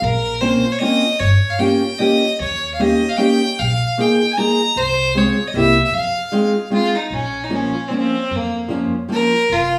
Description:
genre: musette waltz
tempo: 152 BPM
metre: 3/4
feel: swing 55% on 8ths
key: F minor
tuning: A4 = 442 Hz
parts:
  - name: clear fiddle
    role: melody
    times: 0.0-9.8 s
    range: Bb3 to Bb5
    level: -21 LUFS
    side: equal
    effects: none
  - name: upright bass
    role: bass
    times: 0.0-9.8 s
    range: F1 to F2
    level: -25 LUFS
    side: equal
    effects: none
  - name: fingerpicked steel-string acoustic guitar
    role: accompaniment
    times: 0.4-9.3 s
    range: F3 to Ab4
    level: -19 LUFS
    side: equal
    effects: none
room: wet studio reverb, RT60 0.8 s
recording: band playing live in one room, studio reverb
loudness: -17 LUFS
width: mono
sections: 0.0-7.1 A section; 7.1-9.8 B section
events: none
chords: 0.0 Bbmadd9; 1.2 Gm7b5; 2.4 Eb7; 3.6 Bb7sus4; 4.8 Fm/C; 5.5 C7; 5.9 Fm7; 7.1 Bbm

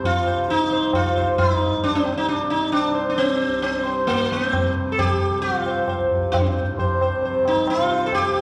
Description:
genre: indian classical, Hindustani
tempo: 133 BPM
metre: 4/4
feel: straight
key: C raga bhimpalasi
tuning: A4 = 439 Hz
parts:
  - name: sitar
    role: melody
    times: 0.0-8.4 s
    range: Bb3 to C5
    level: -22 LUFS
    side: equal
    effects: none
  - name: tanpura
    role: drone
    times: 0.0-8.4 s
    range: C2 to C3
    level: -33 LUFS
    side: equal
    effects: none
  - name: tabla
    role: percussion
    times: 0.0-8.4 s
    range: none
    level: -28 LUFS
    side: equal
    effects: none
room: wet recital hall reverb, RT60 1.4 s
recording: recorded in a church or concert hall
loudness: -21 LUFS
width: mono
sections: 0.0-8.4 A section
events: none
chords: none

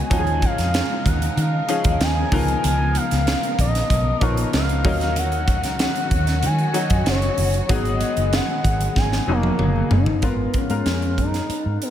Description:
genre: polished 1980s jazz-funk pop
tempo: 95 BPM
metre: 4/4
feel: straight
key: G# dorian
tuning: A4 = 440 Hz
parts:
  - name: expressive portamento lead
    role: melody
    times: 0.0-11.9 s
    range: A#3 to G#5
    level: -25 LUFS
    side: equal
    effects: chorus, slapback echo
  - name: bright grand piano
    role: accompaniment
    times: 0.0-11.9 s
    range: B2 to A#4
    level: -27 LUFS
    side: left 4 dB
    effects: analog chorus, slapback echo
  - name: warm studio string section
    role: sustained chords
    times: 0.0-10.2 s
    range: B2 to A#4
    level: -30 LUFS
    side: left 1 dB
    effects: none
  - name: vintage muted fingered electric bass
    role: bass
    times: 0.1-11.8 s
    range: E#1 to D#3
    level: -22 LUFS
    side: equal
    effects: none
  - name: crisp fusion drum kit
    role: drums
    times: 0.1-11.9 s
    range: hi-hat, kick drum, snare drum, toms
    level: -23 LUFS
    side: equal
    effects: none
  - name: congas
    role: percussion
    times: 0.1-10.1 s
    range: none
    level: -34 LUFS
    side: right 2 dB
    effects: none
room: moderate lush hall reverb, RT60 2.8 s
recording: big arena sound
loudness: -18 LUFS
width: side -10 dB against mid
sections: 0.0-10.2 A section; 10.2-11.9 B section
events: drum fill 9.0-10.2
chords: 0.1 D#9sus4; 2.3 C#13; 4.8 D#m7; 7.7 G#m7; 10.2 G#m69

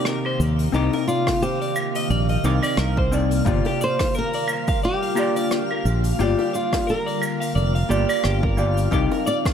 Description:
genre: sunset chillout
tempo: 88 BPM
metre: 4/4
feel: swing 57% on 16ths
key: G minor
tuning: A4 = 438 Hz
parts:
  - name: flamenco guitar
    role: melody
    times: 0.0-9.4 s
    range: Eb4 to D5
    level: -26 LUFS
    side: equal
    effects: ping-pong delay
  - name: vintage hollow-body jazz guitar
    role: accompaniment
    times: 0.0-9.5 s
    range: Bb3 to D6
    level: -26 LUFS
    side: moving between left 7 dB and right 4 dB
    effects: auto-pan, tape echo
  - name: ethereal airy pad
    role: sustained chords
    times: 0.0-9.5 s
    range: C3 to F4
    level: -28 LUFS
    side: left 2 dB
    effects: ensemble chorus, built-in reverb, phaser
  - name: electric guitar at the edge of break-up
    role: arpeggios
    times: 0.0-9.4 s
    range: F4 to F5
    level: -29 LUFS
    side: equal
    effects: spring reverb, tape echo
  - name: twinkling granular texture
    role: texture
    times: 0.0-9.5 s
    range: F5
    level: -33 LUFS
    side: right 4 dB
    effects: built-in reverb
  - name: vintage brush drum kit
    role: drums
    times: 0.1-9.5 s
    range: cabasa, claves, hi-hat, rim click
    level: -31 LUFS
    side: equal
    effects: none
  - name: fingered electric bass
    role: bass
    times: 0.4-9.1 s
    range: F1 to Eb2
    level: -21 LUFS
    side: equal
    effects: none
  - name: bongos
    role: percussion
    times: 0.9-9.5 s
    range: none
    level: -35 LUFS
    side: right 1 dB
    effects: none
  - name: electronic kick drum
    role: drums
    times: 1.3-9.5 s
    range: none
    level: -25 LUFS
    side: equal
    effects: overdrive
room: little or no reverb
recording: none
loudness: -19 LUFS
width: side -8 dB against mid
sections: 0.0-9.5 A section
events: none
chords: 0.0 Cm9; 3.5 Gm7; 8.9 Cm9

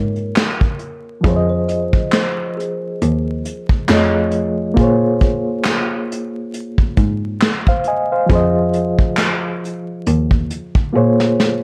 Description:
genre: lo-fi hip hop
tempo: 68 BPM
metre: 4/4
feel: swing 56% on 16ths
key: Bb minor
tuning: A4 = 440 Hz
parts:
  - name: kalimba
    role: melody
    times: 0.0-4.7 s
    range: Ab4 to Eb5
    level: -29 LUFS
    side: equal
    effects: low-pass filter, tape echo
  - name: reed electric piano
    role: accompaniment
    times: 0.0-11.6 s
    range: F3 to Ab5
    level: -21 LUFS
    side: equal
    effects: fast tremolo, low-pass filter
  - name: warm cello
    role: bass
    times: 0.0-11.6 s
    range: Eb2 to Bb2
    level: -21 LUFS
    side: equal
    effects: none
  - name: vintage brush drum kit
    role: drums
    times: 0.2-11.6 s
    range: handclaps, hi-hat, kick drum, snare drum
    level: -19 LUFS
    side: equal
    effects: vintage 12-bit sampler grit
room: light reverb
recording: vinyl crackle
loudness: -17 LUFS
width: mono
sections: 0.0-11.6 A section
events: drum fill 10.9-11.6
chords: 0.0 Bbm7; 1.2 Fm7; 3.9 F7alt; 4.8 Bbm9; 8.3 Fm7; 10.9 Bbm7

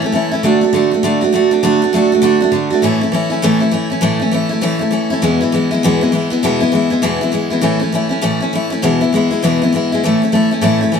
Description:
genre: rock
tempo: 200 BPM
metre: 4/4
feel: swing 62% on 8ths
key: A major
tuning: A4 = 440 Hz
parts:
  - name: picked steel-string acoustic guitar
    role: solo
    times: 0.0-11.0 s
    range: E2 to F#4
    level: -12 LUFS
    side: equal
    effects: none
room: moderate studio reverb, RT60 0.7 s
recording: band playing live in one room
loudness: -12 LUFS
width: side -6 dB against mid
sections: 0.0-10.0 A section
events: none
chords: 0.4 D; 2.8 A; 5.2 E; 7.6 A; 8.8 E; 10.0 A

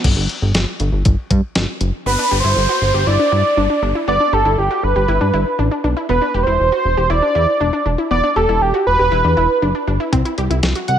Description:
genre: synth-pop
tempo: 119 BPM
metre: 4/4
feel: straight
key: G major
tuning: A4 = 439 Hz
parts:
  - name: chorused synth bass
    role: bass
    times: 0.0-11.0 s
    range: E1 to G2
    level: -18 LUFS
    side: equal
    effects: none
  - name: clean 12-bit digital drum machine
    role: drums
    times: 0.0-1.9, 10.1-11.0 s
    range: crash cymbal, hi-hat, kick drum, snare drum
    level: -18 LUFS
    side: left 1 dB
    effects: none
  - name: wide unison lead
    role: melody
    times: 2.1-11.0 s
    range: G4 to F#5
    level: -16 LUFS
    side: right 2 dB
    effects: digital delay
  - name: wide unison pluck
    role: arpeggios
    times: 2.1-10.9 s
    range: B3 to G4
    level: -22 LUFS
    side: left 2 dB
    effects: digital delay
  - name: downlifter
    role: sound effects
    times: 2.1-6.1 s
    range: none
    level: -25 LUFS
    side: equal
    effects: none
room: light reverb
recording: none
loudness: -14 LUFS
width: side -9 dB against mid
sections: 0.0-2.1 A section; 2.1-11.0 B section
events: none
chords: 0.0 N.C.; 2.1 G; 6.1 Emadd9; 10.1 C

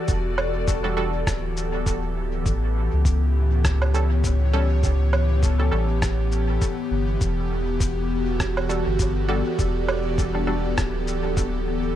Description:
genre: ambient dub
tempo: 101 BPM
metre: 4/4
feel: swing 58% on 16ths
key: E dorian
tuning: A4 = 440 Hz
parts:
  - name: airy breathy pad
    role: sustained chords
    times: 0.0-12.0 s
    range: A2 to D5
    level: -26 LUFS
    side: left 1 dB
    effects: chorus
  - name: soft dub sub bass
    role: bass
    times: 0.1-12.0 s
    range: D1 to C#2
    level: -23 LUFS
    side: equal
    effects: none
  - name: electronic cabasa, woodblock and rim click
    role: drums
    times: 0.1-11.5 s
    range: none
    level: -30 LUFS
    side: right 1 dB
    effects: dub echo
  - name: electronic kick drum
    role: drums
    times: 0.1-11.5 s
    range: none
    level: -24 LUFS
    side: equal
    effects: none
  - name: filtered dub chord stab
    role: stabs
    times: 0.8-10.7 s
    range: G3 to A4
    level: -31 LUFS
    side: right 2 dB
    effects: chorus, dub echo
room: little or no reverb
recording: none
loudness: -20 LUFS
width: side -12 dB against mid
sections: 0.0-12.0 A section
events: none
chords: 0.0 Em11; 2.5 A7; 7.2 Em11

